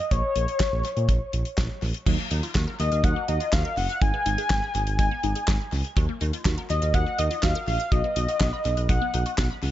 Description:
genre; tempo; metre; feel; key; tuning
synth-pop; 123 BPM; 4/4; straight; Eb minor; A4 = 435 Hz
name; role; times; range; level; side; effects
octave-doubled lead; melody; 0.0-9.3 s; Db5 to Ab5; -27 LUFS; left 2 dB; chorus, shimmer reverb, tape echo
smooth synth bass; bass; 0.1-9.7 s; Gb1 to Bb2; -26 LUFS; equal; none
damped 70s drum kit; drums; 0.1-9.7 s; crash cymbal, handclaps, hi-hat, kick drum, snare drum; -26 LUFS; equal; tape echo
resonant blip pluck; arpeggios; 2.1-9.6 s; Gb3 to Ab6; -34 LUFS; right 1 dB; phaser, shimmer reverb, tape echo
room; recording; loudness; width
light reverb, studio ambience; echo-heavy mix, nothing above 7.7 kHz; -22 LUFS; side -13 dB against mid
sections
0.0-2.1 A section; 2.1-9.7 B section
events
none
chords
0.1 Bbm; 2.1 Ebmadd9; 4.0 Abm; 6.0 Ebmadd9; 7.9 B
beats
| 0.11 0.60 1.09 1.58 | 2.06 2.55 3.04 3.53 | 4.02 4.50 4.99 5.48 | 5.97 6.46 6.94 7.43 | 7.92 8.41 8.89 9.38

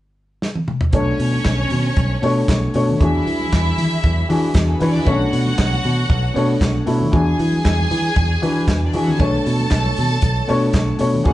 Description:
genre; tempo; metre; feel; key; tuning
disco; 116 BPM; 4/4; straight; B dorian; A4 = 441 Hz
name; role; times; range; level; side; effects
warm soul drum kit; drums; 0.4-11.3 s; handclaps, hi-hat, kick drum, snare drum, toms; -21 LUFS; equal; none
clear studio string section; second line; 0.9-11.3 s; G#3 to A5; -25 LUFS; right 1 dB; none
dark grand piano; accompaniment; 0.9-11.3 s; B2 to C#5; -20 LUFS; left 2 dB; none
fingered electric bass; bass; 0.9-11.3 s; B1 to E3; -20 LUFS; equal; none
congas; percussion; 0.9-11.3 s; none; -29 LUFS; left 2 dB; none
room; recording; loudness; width
light reverb; band playing live in one room, nothing above 10.5 kHz, faint mains hum; -15 LUFS; side -15 dB against mid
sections
0.9-11.3 A section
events
drum fill 0.4-0.9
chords
0.0 N.C.; 0.9 Bm9; 3.0 E9; 5.1 Bm9; 7.1 E9; 9.2 Bm9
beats
0.42 | 0.94 1.45 1.97 2.49 | 3.00 3.52 4.04 4.55 | 5.07 5.59 6.10 6.62 | 7.14 7.65 8.17 8.69 | 9.20 9.72 10.23 10.75 | 11.27

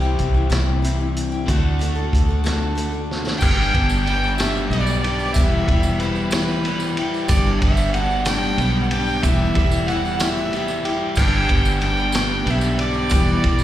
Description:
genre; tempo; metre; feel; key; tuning
folk rock and heartland rock; 62 BPM (dotted quarters); 6/8; straight; G major; A4 = 440 Hz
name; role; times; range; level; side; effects
picked steel-string acoustic guitar; accompaniment; 0.0-13.6 s; G2 to A4; -25 LUFS; left 4 dB; plate reverb
overdriven electric guitar; riff; 0.0-13.6 s; E2 to G4; -25 LUFS; right 1 dB; slapback echo
fingered electric bass; bass; 0.0-13.6 s; E1 to D2; -22 LUFS; equal; none
vintage drum kit; drums; 0.2-13.6 s; crash cymbal, hi-hat, kick drum, ride cymbal, snare drum; -22 LUFS; equal; none
dark fiddle; melody; 3.4-13.6 s; B4 to G5; -24 LUFS; right 2 dB; slapback echo, plate reverb
tambourine; percussion; 3.4-13.6 s; none; -35 LUFS; right 4 dB; none
warm concert grand piano; accompaniment; 11.2-13.6 s; B3 to B4; -33 LUFS; right 4 dB; plate reverb, slapback echo
room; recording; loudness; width
light reverb; live gig heard through the venue's PA, recital hall reverb; -17 LUFS; side -12 dB against mid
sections
0.0-3.4 A section; 3.4-13.6 B section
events
drum fill 3.1-3.4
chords
0.0 C; 1.5 D; 3.4 G; 5.4 Em; 7.3 G; 9.2 Em; 11.2 G; 13.1 Em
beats
0.51 | 1.48 2.45 | 3.42 4.39 | 5.36 6.33 | 7.30 8.27 | 9.23 10.20 | 11.17 12.14 | 13.11

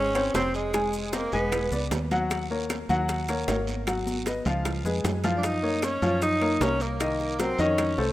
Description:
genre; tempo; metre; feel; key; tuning
Afro-Cuban jazz; 153 BPM; 4/4; straight; Db major; A4 = 439 Hz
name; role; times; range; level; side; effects
clear tenor saxophone; melody; 0.0-1.9, 5.4-8.1 s; Ab3 to Eb4; -28 LUFS; right 1 dB; none
warm soprano saxophone; second line; 0.0-1.9, 5.4-8.1 s; Ab4 to Eb5; -37 LUFS; right 3 dB; none
warm baby grand piano; accompaniment; 0.0-8.1 s; C3 to Ab5; -28 LUFS; left 2 dB; none
fingered electric bass; bass; 0.0-8.1 s; Fb1 to Gb2; -31 LUFS; right 1 dB; none
maracas; percussion; 0.1-8.0 s; none; -44 LUFS; left 3 dB; none
claves; percussion; 0.2-8.0 s; none; -43 LUFS; left 3 dB; none
congas; percussion; 0.2-8.1 s; none; -38 LUFS; right 1 dB; none
timbales; percussion; 0.2-8.0 s; none; -36 LUFS; right 5 dB; none
bongos; percussion; 0.3-8.1 s; none; -36 LUFS; left 4 dB; none
guiro; percussion; 0.3-8.1 s; none; -42 LUFS; right 4 dB; none
room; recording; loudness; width
moderate lush hall reverb, RT60 2.4 s; rough home demo mix; -24 LUFS; side -15 dB against mid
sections
0.0-8.1 A section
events
drum fill 3.9-5.4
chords
0.0 Dbmaj7; 0.7 Fm7; 1.5 E9; 2.3 Ebm7; 3.9 Abm7; 4.7 Db7; 5.4 Gbmaj7; 7.0 Cm7b5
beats
0.35 | 0.74 1.13 1.52 1.92 | 2.31 2.70 3.09 3.48 | 3.87 4.27 4.66 5.05 | 5.44 5.83 6.22 6.61 | 7.00 7.39 7.79

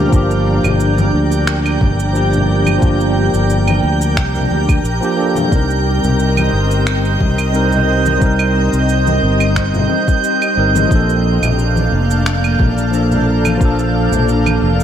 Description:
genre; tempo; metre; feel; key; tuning
sunset chillout; 89 BPM; 4/4; swing 53% on 16ths; G minor; A4 = 440 Hz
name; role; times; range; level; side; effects
tine electric piano; accompaniment; 0.0-14.8 s; F3 to Bb4; -18 LUFS; equal; auto-pan, tape echo
shimmering ambient pad; sustained chords; 0.0-14.8 s; Bb3 to G5; -19 LUFS; equal; chorus, built-in reverb, vintage 12-bit sampler grit
fingered electric bass; bass; 0.0-14.8 s; F1 to D2; -16 LUFS; equal; none
drifting glass-harmonics texture; texture; 0.0-14.8 s; G6; -22 LUFS; right 8 dB; chorus, built-in reverb
electronic cabasa, claves and finger snaps; drums; 0.1-14.8 s; none; -24 LUFS; right 4 dB; none
electronic kick drum; drums; 0.1-13.8 s; none; -15 LUFS; equal; none
congas; percussion; 0.6-14.6 s; none; -24 LUFS; left 4 dB; none
room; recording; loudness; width
moderate lush hall reverb, RT60 1.6 s, digital ambience; none; -12 LUFS; side -9 dB against mid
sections
0.0-14.8 A section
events
none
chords
0.0 Gm7; 5.5 Cm7; 10.9 Bbmaj7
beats
| 0.13 0.80 1.47 2.15 | 2.82 3.50 4.17 4.84 | 5.52 6.19 6.87 7.54 | 8.22 8.89 9.56 10.24 | 10.91 11.59 12.26 12.94 | 13.61 14.28

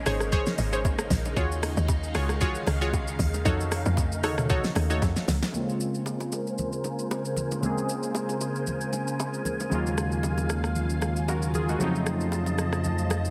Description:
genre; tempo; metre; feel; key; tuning
amapiano; 115 BPM; 4/4; swing 55% on 16ths; Bb minor; A4 = 441 Hz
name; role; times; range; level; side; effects
soft string machine; sustained chords; 0.0-13.3 s; Db3 to A5; -35 LUFS; equal; phaser, ensemble chorus, low-pass filter
woody log drum bass; bass; 0.0-5.4 s; Ab1 to F2; -30 LUFS; equal; none
analog pluck; stabs; 0.1-5.0 s; Eb4 to Db5; -34 LUFS; equal; chorus, tape echo
smooth R&B drum kit; drums; 0.1-13.3 s; hi-hat, kick drum, rim click, shaker, snare drum, toms; -32 LUFS; equal; none
congas and bongos; percussion; 0.3-13.2 s; none; -38 LUFS; equal; none
warm analog keys; accompaniment; 5.5-13.3 s; Db3 to Bb4; -32 LUFS; equal; chorus, low-pass filter
fat analog bass; bass; 9.7-13.3 s; Eb2 to F2; -30 LUFS; equal; none
room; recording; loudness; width
light reverb; heavily compressed radio sound; -27 LUFS; mono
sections
0.0-5.5 A section; 5.5-13.3 B section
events
drop 0.0-5.5; drum fill 5.0-5.5; filter sweep 5.5-13.3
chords
0.0 Bbm9; 1.4 Ebm11; 3.5 F7b9b13; 5.5 Bbm9; 9.7 Ebm11; 11.8 F7b9b13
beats
0.32 0.85 | 1.37 1.89 2.41 2.93 | 3.45 3.98 4.50 5.02 | 5.54 6.06 6.58 7.11 | 7.63 8.15 8.67 9.19 | 9.71 10.24 10.76 11.28 | 11.80 12.32 12.85

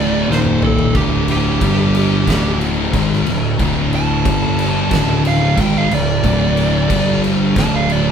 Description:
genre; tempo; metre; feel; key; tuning
stoner and doom metal; 91 BPM; 4/4; straight; unclear; A4 = 436 Hz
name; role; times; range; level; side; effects
fuzz lead guitar; melody; 0.0-8.1 s; G4 to A5; -21 LUFS; right 4 dB; distortion
thick fuzz guitar; riff; 0.0-8.1 s; D2 to G#3; -17 LUFS; left 6 dB; distortion
thick fuzz guitar; riff; 0.0-8.1 s; D2 to G#3; -20 LUFS; right 9 dB; distortion
fuzz picked electric bass; bass; 0.0-8.1 s; D1 to G#1; -22 LUFS; right 1 dB; overdrive
oversized low-tuned drum kit; drums; 0.3-8.0 s; crash cymbal, kick drum, snare drum, toms; -20 LUFS; equal; none
room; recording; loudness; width
moderate large studio reverb, RT60 1.1 s; band playing live in one room; -13 LUFS; side -7 dB against mid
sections
0.0-8.1 A section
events
lead electric guitar solo 0.0-8.1; drum fill 0.3-0.9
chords
0.3 Eb5; 0.9 D5; 1.6 G5; 2.3 D5; 4.2 G5; 4.9 D5; 6.9 G5; 7.6 D5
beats
0.28 | 0.94 1.61 2.27 2.93 | 3.59 4.25 4.91 5.57 | 6.23 6.90 7.56

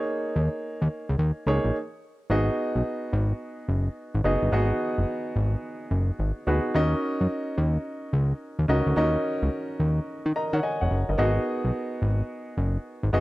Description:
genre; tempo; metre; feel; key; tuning
R&B, new jack swing; 108 BPM; 4/4; swing 65% on 16ths; G# minor; A4 = 440 Hz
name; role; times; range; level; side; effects
warm baby grand piano; accompaniment; 0.0-13.2 s; A#3 to A#5; -27 LUFS; equal; none
fat analog bass; bass; 0.4-13.2 s; E#1 to D#3; -23 LUFS; equal; none
room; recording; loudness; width
studio reverb; dry, close 1970s-style studio recording; -24 LUFS; side -18 dB against mid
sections
0.0-2.3 A section; 2.3-13.2 B section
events
stop 1.7-2.3; grand piano fill 10.1-11.2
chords
0.0 D#7sus4; 2.3 G#m7; 6.7 D#m7; 11.2 G#m7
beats
| 0.07 0.63 1.18 1.74 | 2.29 2.85 3.41 3.96 | 4.52 5.07 5.63 6.18 | 6.74 7.29 7.85 8.41 | 8.96 9.52 10.07 10.63 | 11.18 11.74 12.29 12.85

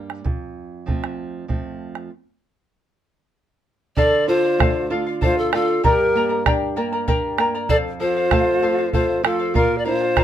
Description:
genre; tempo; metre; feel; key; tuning
andean folk, Andean ensemble; 97 BPM; 3/4; straight; D minor; A4 = 442 Hz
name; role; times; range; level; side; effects
nylon-string guitar; accompaniment; 0.0-10.2 s; F2 to F4; -27 LUFS; right 4 dB; none
bombo; percussion; 0.1-10.2 s; none; -21 LUFS; right 2 dB; none
bright polished pan flute; melody; 4.0-10.2 s; A4 to D5; -20 LUFS; left 2 dB; none
breathy large quena; second line; 4.0-10.2 s; F4 to Bb4; -23 LUFS; equal; none
charango; accompaniment; 4.0-10.2 s; G4 to Bb5; -24 LUFS; left 3 dB; none
room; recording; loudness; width
moderate small room reverb, RT60 0.5 s; minimal, uncompressed stereo recording; -17 LUFS; side -10 dB against mid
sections
0.0-4.0 A section; 4.0-10.2 B section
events
stop 2.1-4.0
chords
0.3 F; 2.1 N.C.; 4.0 Dm; 5.8 Gm; 7.7 F; 9.6 Bb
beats
| 0.26 0.88 1.50 | 2.12 2.74 3.36 | 3.98 4.59 5.21 | 5.83 6.45 7.07 | 7.69 8.31 8.93 | 9.55 10.17

